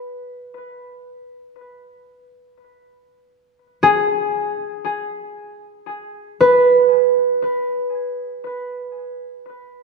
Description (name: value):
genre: ambient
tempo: free time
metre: none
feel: none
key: unclear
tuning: A4 = 440 Hz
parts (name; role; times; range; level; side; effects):
- concert harp; solo; 0.0-9.7 s; G#4 to B4; -17 LUFS; right 1 dB; tape echo
room: wet concert hall reverb, RT60 2.2 s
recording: none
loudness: -16 LUFS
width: side -3 dB against mid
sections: 0.0-9.8 A section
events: none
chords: 0.0 N.C.; 1.1 G#m; 9.3 B5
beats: free time